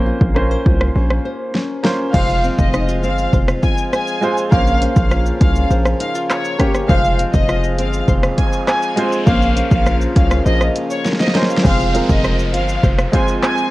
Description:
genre	dancehall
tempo	101 BPM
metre	4/4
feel	straight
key	F minor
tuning	A4 = 440 Hz
part	warm baby grand piano	accompaniment	0.0-13.7 s	Ab3 to C5	-23 LUFS	right 1 dB	none
part	nylon-string guitar	arpeggios	0.0-13.7 s	F3 to C5	-24 LUFS	left 2 dB	none
part	hard-hitting 808-style bass	bass	0.0-13.1 s	F1 to C2	-18 LUFS	equal	none
part	deep house drum kit	drums	0.2-13.7 s	crash cymbal, handclaps, hi-hat, kick drum, rim click, shaker, snare drum	-17 LUFS	equal	overdrive, vintage 12-bit sampler grit
part	dark symphonic violin section	melody	2.1-13.7 s	Db5 to Ab5	-21 LUFS	equal	none
part	pedal harmonium	sustained chords	2.1-11.6 s	Db3 to F4	-26 LUFS	equal	none
part	noise sweep and downlifter	sound effects	8.1-13.7 s	none	-31 LUFS	left 1 dB	none
room	small room reverb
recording	worn, warbling old tape, cassette tape, warbly pitch drift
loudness	-13 LUFS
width	side -18 dB against mid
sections	0.0-2.1 A section; 2.1-11.6 B section; 11.6-13.7 C section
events	drum fill 1.5-2.1, 11.1-11.6; noise sweep 8.1-11.6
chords	0.0 Bbmadd9; 2.1 Fm; 4.5 Bbmadd9; 6.9 Fm; 9.3 Bbmadd9; 11.6 Fm

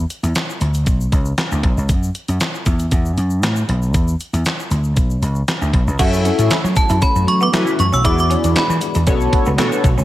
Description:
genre	early-eighties boogie funk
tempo	117 BPM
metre	4/4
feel	straight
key	F# minor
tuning	A4 = 438 Hz
part	vintage slap bass	bass	0.0-10.0 s	B1 to F#3	-17 LUFS	equal	none
part	detuned 8-bit digital drum machine	drums	0.1-10.0 s	crash cymbal, handclaps, hi-hat, kick drum, snare drum	-19 LUFS	equal	gated reverb
part	egg shaker	percussion	0.1-10.0 s	none	-36 LUFS	left 5 dB	none
part	chorused polysynth	accompaniment	6.0-9.9 s	B3 to E5	-20 LUFS	left 2 dB	phaser
part	string machine, full ensemble	sustained chords	6.0-10.0 s	D3 to C#5	-26 LUFS	left 1 dB	ensemble chorus
part	semi-hollow electric guitar	riff	6.0-10.0 s	A3 to F#4	-25 LUFS	right 4 dB	lush chorus
part	metallic FM bell	melody	6.8-9.6 s	A5 to E6	-20 LUFS	right 1 dB	chorus
room	little or no reverb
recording	none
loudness	-14 LUFS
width	side -15 dB against mid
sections	0.0-6.0 A section; 6.0-10.0 B section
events	none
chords	0.0 Dsus2; 0.9 Bsus2; 1.9 F#m7; 3.9 Dsus2; 5.0 Bmadd9; 6.0 F#m7; 8.0 E9; 9.1 Bm9

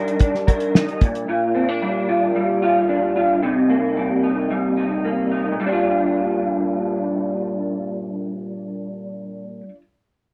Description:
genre	indie pop, bedroom pop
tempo	112 BPM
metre	4/4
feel	straight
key	Bb major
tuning	A4 = 435 Hz
part	electric guitar through a small old amp	accompaniment	0.0-9.8 s	Bb2 to Bb4	-22 LUFS	equal	ensemble chorus, warbly pitch drift
part	cloth-damped thuddy drum kit	drums	0.1-1.3 s	hi-hat, kick drum, snare drum	-18 LUFS	equal	none
room	light reverb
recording	dry, close 1970s-style studio recording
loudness	-20 LUFS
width	mono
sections	0.0-5.6 A section; 5.6-9.9 B section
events	none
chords	0.0 Ebmaj7/G; 1.0 Bb6; 3.4 Cm7; 5.6 Bb6

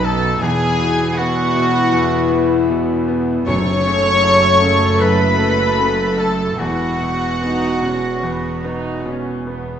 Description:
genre	cinematic, emotional film score for orchestra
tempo	72-80 BPM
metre	4/4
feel	rubato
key	unclear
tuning	A4 = 440 Hz
part	warm symphonic violin section	melody	0.0-9.1 s	F#5 to C#6	-22 LUFS	left 2 dB	none
part	bright clarinet	second line	0.0-9.0 s	F#4 to C#5	-24 LUFS	equal	none
part	warm oboe	second line	0.0-9.1 s	F#4 to C#5	-22 LUFS	right 2 dB	none
part	warm symphonic violin section	second line	0.0-9.0 s	F#4 to C#5	-24 LUFS	left 3 dB	none
part	bright grand piano	accompaniment	0.0-9.8 s	B1 to D#4	-23 LUFS	equal	none
part	warm studio viola section	accompaniment	0.0-9.8 s	A3 to A4	-24 LUFS	right 1 dB	none
part	dark French horn section	sustained chords	0.0-9.5 s	A3 to A4	-23 LUFS	left 5 dB	none
part	warm symphonic cello section	bass	0.0-9.6 s	E2 to B2	-26 LUFS	right 3 dB	none
part	warm symphonic double bass section	bass	0.0-9.6 s	E1 to B1	-25 LUFS	right 3 dB	none
part	timpani	percussion	3.5-4.6 s	F#2	-26 LUFS	equal	none
room	wet recital hall reverb, RT60 1.4 s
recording	nothing above 8.0 kHz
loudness	-14 LUFS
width	side -8 dB against mid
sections	0.0-9.8 A section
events	none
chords	0.4 Esus2; 3.5 F#m; 6.6 Esus2

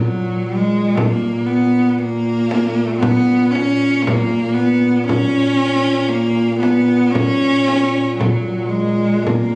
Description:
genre	caucasian folk, Caucasian lament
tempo	58 BPM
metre	4/4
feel	rubato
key	Bb phrygian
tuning	A4 = 440 Hz
part	warm cello	melody	0.0-9.6 s	Gb3 to Db4	-15 LUFS	equal	none
part	dark duduk	drone	0.0-9.6 s	Bb2	-21 LUFS	equal	none
part	frame drum	percussion	1.0-9.5 s	none	-20 LUFS	equal	none
room	light reverb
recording	recorded on a phone in the room, studio reverb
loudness	-14 LUFS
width	side -30 dB against mid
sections	0.0-9.6 A section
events	none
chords	none

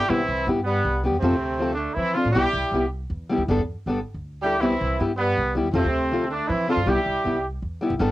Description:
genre	highlife guitar band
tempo	106 BPM (dotted quarters)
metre	12/8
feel	straight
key	C major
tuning	A4 = 440 Hz
part	warm horn section	melody	0.0-7.4 s	C3 to G4	-23 LUFS	right 1 dB	none
part	fingerpicked steel-string acoustic guitar	accompaniment	0.0-8.1 s	F3 to A4	-23 LUFS	left 1 dB	none
part	upright bass	bass	0.1-8.1 s	G1 to F3	-28 LUFS	equal	none
room	light reverb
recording	home recording on cassette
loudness	-21 LUFS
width	side -16 dB against mid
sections	0.1-8.1 A section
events	none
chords	0.1 Cmaj7; 1.2 F; 2.4 Cmaj7; 3.5 Gadd9; 4.6 Cmaj7; 5.7 F; 6.9 Cmaj7

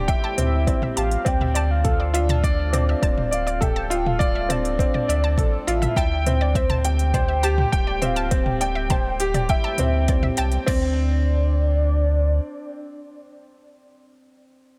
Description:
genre	piano and strings electronica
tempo	102 BPM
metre	4/4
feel	straight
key	unclear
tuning	A4 = 440 Hz
part	warm velvety synth lead	melody	0.0-13.8 s	C5 to G5	-30 LUFS	equal	chorus, tremolo
part	analog pluck	arpeggios	0.0-10.9 s	D5 to A5	-36 LUFS	equal	chorus, sidechain pumping, tape echo
part	warm upright piano	riff	0.0-14.8 s	C4 to G5	-28 LUFS	equal	tape echo
part	warm sub bass	bass	0.0-12.4 s	D1 to D2	-25 LUFS	equal	sidechain pumping
part	deep house drum kit	drums	0.1-10.8 s	crash cymbal, kick drum	-25 LUFS	equal	none
part	deep house drum kit	drums	0.1-10.6 s	hi-hat, toms	-31 LUFS	equal	none
room	little or no reverb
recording	none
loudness	-21 LUFS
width	mono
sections	0.0-10.7 A section; 10.7-13.0 B section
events	drop 0.0-10.7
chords	0.0 C/D; 1.3 Dm7; 6.0 C/D; 10.7 Csus2/D

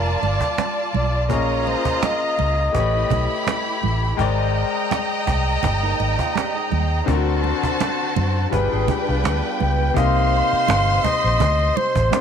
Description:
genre	lush 1970s-style soul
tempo	83 BPM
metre	4/4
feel	swing 54% on 16ths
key	G phrygian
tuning	A4 = 440 Hz
part	breathy flugelhorn	melody	0.0-3.8, 9.6-12.2 s	Bb4 to G5	-22 LUFS	equal	none
part	warm studio violin section	second line	0.0-12.2 s	D4 to C6	-24 LUFS	equal	none
part	clear grand piano	accompaniment	0.0-12.2 s	C3 to A5	-26 LUFS	left 12 dB	none
part	vintage muted fingered electric bass	bass	0.0-12.1 s	F1 to F#2	-21 LUFS	right 1 dB	transformer saturation
part	cajon	drums	0.1-12.2 s	none	-26 LUFS	right 4 dB	none
part	congas	percussion	0.2-12.2 s	none	-29 LUFS	right 11 dB	none
part	electric guitar through a small old amp	riff	5.8-9.9 s	Bb3 to B4	-30 LUFS	right 11 dB	lush chorus
room	light reverb, small room ambience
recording	1960s-style stereo with parts hard left and right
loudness	-18 LUFS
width	side -8 dB against mid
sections	0.0-10.0 A section; 10.0-12.2 B section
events	none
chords	0.0 Gm9; 1.3 Bbm7; 2.7 A9; 4.2 Abmaj9#11; 7.1 D7b13; 8.5 G7b9; 10.0 Cm9

